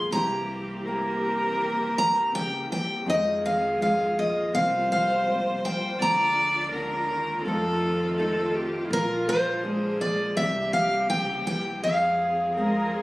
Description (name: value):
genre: acoustic folk-pop ballad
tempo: 82 BPM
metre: 4/4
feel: straight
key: F minor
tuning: A4 = 440 Hz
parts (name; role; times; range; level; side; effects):
- picked steel-string acoustic guitar; melody; 0.0-13.0 s; Bb4 to C6; -24 LUFS; equal; none
- warm viola; second line; 0.0-13.0 s; E4 to D5; -29 LUFS; equal; none
- nylon-string guitar; accompaniment; 0.0-13.0 s; F2 to A4; -32 LUFS; equal; none
- warm studio string section; sustained chords; 0.0-13.0 s; C3 to Ab4; -34 LUFS; equal; none
- upright bass; bass; 0.0-13.0 s; Bb1 to F2; -37 LUFS; equal; none
room: light reverb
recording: recorded on a phone in the room, studio reverb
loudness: -23 LUFS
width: side -19 dB against mid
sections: 0.0-13.0 A section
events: none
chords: 0.1 C7; 3.1 Fm7; 4.5 C7sus4; 6.0 Bb7/D; 7.5 F7; 8.9 Bb7; 10.4 C7; 11.8 Fm